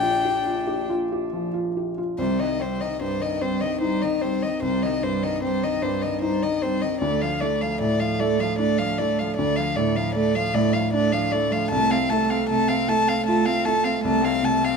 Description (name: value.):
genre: neoclassical piano and strings.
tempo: 51 BPM (dotted quarters).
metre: 6/8.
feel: rubato.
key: C dorian.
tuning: A4 = 438 Hz.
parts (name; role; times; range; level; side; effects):
warm violin; melody; 0.0-14.8 s; C5 to A5; -24 LUFS; left 3 dB; none.
rich cello; second line; 0.0-14.8 s; Eb3 to D4; -28 LUFS; right 9 dB; none.
felt-muted upright piano; accompaniment; 0.0-14.8 s; Bb1 to G4; -24 LUFS; left 1 dB; none.
room: light reverb.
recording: minimal, uncompressed stereo recording.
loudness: -21 LUFS.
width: side -5 dB against mid.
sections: 0.0-2.2 A section; 2.2-14.8 B section.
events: none.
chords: 0.0 Bb6; 2.2 Cm; 7.0 Dm; 11.7 F/C.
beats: 0.91 | 2.19 3.41 | 4.62 5.82 | 7.01 8.19 | 9.38 10.54 | 11.72 12.89 | 14.05.